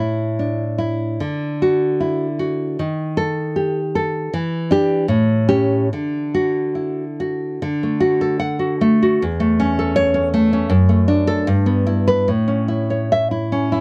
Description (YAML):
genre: romantic piece for solo classical guitar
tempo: 68-82 BPM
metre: 2/4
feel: rubato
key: D major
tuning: A4 = 442 Hz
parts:
  - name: nylon-string guitar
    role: solo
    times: 0.0-13.8 s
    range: E2 to F#5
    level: -19 LUFS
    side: equal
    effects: none
room: light reverb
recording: dry, close 1970s-style studio recording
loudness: -19 LUFS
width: mono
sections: 0.0-7.6 A section; 7.6-13.8 B section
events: none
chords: 0.0 A5; 1.2 D; 2.8 Eb; 4.3 Em7; 5.1 A7; 5.9 D; 9.2 A/E; 10.7 D/F#; 11.5 Em/G; 12.3 A